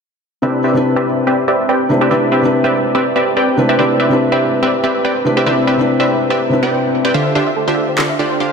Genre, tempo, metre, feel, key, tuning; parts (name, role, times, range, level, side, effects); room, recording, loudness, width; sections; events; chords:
future bass; 143 BPM; 4/4; swing 54% on 16ths, half-time; C major; A4 = 440 Hz
felt-muted upright piano; accompaniment; 0.4-7.2 s; C3 to B4; -16 LUFS; left 1 dB; ping-pong delay
supersaw stab; riff; 0.4-8.5 s; D3 to G5; -14 LUFS; equal; low-pass filter, ping-pong delay
soft round pluck; arpeggios; 7.1-8.5 s; A4 to E5; -22 LUFS; right 2 dB; chorus, ping-pong delay
electronic handclaps; drums; 8.0-8.1 s; -19 LUFS; equal
moderate lush hall reverb, RT60 2.5 s; dense, heavily limited modern master; -12 LUFS; side -5 dB against mid
0.4-8.5 A section
filter sweep on supersaw synth 0.4-8.5
0.4 Cmaj9; 7.1 Dm11